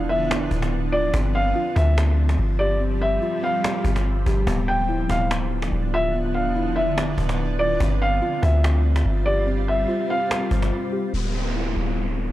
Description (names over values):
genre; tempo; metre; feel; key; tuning
hip hop, atmospheric cloud-rap; 144 BPM; 4/4; half-time; D dorian; A4 = 439 Hz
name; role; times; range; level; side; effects
felt-muted upright piano; melody; 0.0-12.0 s; D5 to G5; -25 LUFS; equal; low-pass filter, tape echo
granular cloud pad; sustained chords; 0.0-12.3 s; D3 to F4; -28 LUFS; right 1 dB; built-in reverb, low-pass filter
muted felt-like synth keys; arpeggios; 0.0-12.3 s; B3 to G4; -29 LUFS; left 1 dB; chorus, low-pass filter, tape echo
soft 808-style bass; bass; 0.0-12.3 s; D1 to D2; -22 LUFS; equal; none
cajon; drums; 0.1-10.7 s; none; -29 LUFS; equal; none
downlifter; sound effects; 11.1-12.3 s; none; -29 LUFS; left 1 dB; none
room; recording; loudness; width
little or no reverb; dry, gritty hardware recording, transformer saturation; -19 LUFS; side -15 dB against mid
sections
0.0-11.1 A section; 11.1-12.3 B section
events
break 10.7-11.1; filter sweep 11.1-12.3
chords
0.0 Dm69; 1.1 G7sus4; 4.5 Dm69; 7.8 G7sus4; 11.1 Dm69